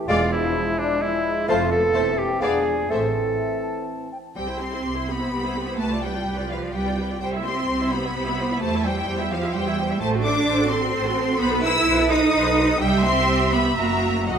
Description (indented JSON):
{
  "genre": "classical",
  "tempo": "128 BPM",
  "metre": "3/4",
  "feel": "rubato",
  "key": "A minor, C major from 4.4 s",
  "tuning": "A4 = 440 Hz",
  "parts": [
    { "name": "bright trombone section", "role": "sustained chords", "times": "0.0-4.1 s", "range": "E3 to D4", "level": "-30 LUFS", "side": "right 3 dB", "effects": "none" },
    { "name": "warm French horn section", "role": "sustained chords", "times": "0.0-3.9 s", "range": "D4 to A4", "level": "-23 LUFS", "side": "left 2 dB", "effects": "none" },
    { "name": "rich symphonic violin section", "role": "melody", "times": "0.1-14.4 s", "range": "E5 to E6", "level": "-30 LUFS", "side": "left 3 dB", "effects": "none" },
    { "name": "clear oboe", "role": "second line", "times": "0.1-3.9 s", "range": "D4 to A4", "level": "-28 LUFS", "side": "right 1 dB", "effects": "none" },
    { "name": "clear symphonic violin section", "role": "second line", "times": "0.1-14.4 s", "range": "C5 to E6", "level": "-28 LUFS", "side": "left 3 dB", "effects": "none" },
    { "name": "mellow clarinet", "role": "second line", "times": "0.1-3.1 s", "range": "C5 to D5", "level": "-32 LUFS", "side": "left 2 dB", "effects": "none" },
    { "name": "mellow hollow silver concert flute", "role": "second line", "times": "0.1-4.2 s", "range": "E5 to A5", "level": "-32 LUFS", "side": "left 1 dB", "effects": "none" },
    { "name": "clear symphonic viola section", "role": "accompaniment", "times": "0.1-14.4 s", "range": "G#3 to E5", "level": "-27 LUFS", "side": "right 1 dB", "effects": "none" },
    { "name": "warm bassoon", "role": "accompaniment", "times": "0.1-3.1 s", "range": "G#3 to B3", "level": "-31 LUFS", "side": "right 2 dB", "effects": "none" },
    { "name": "rich symphonic cello section", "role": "bass", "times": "0.1-14.4 s", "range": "E2 to E4", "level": "-24 LUFS", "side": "right 2 dB", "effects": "none" },
    { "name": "rich symphonic double bass section", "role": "bass", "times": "0.1-14.4 s", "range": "E1 to E2", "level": "-29 LUFS", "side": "right 2 dB", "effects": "none" },
    { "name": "timpani", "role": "percussion", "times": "14.3-14.4 s", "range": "B2", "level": "-44 LUFS", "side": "left 1 dB", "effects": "none" }
  ],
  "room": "moderate concert hall reverb, RT60 1.7 s",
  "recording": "none",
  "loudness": "-19 LUFS",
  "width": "side -7 dB against mid",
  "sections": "0.0-4.4 A section; 4.4-14.4 B section",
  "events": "none",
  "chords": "0.1 E7b9; 1.5 F; 1.9 Am/E; 2.4 E7b9; 2.9 Am; 4.4 C; 5.8 G7/C; 7.2 C; 8.6 C/E; 10.0 F#dim/A; 11.4 B7b9; 12.8 C; 13.8 F#7",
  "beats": "| 0.08 0.55 1.01 | 1.48 1.94 2.42 | 2.90 3.39 3.87 | 4.37 4.85 5.32 | 5.79 6.27 6.74 | 7.21 7.68 8.15 | 8.62 9.08 9.54 | 10.01 10.47 10.94 | 11.40 11.87 12.34 | 12.82 13.29 13.78 | 14.29"
}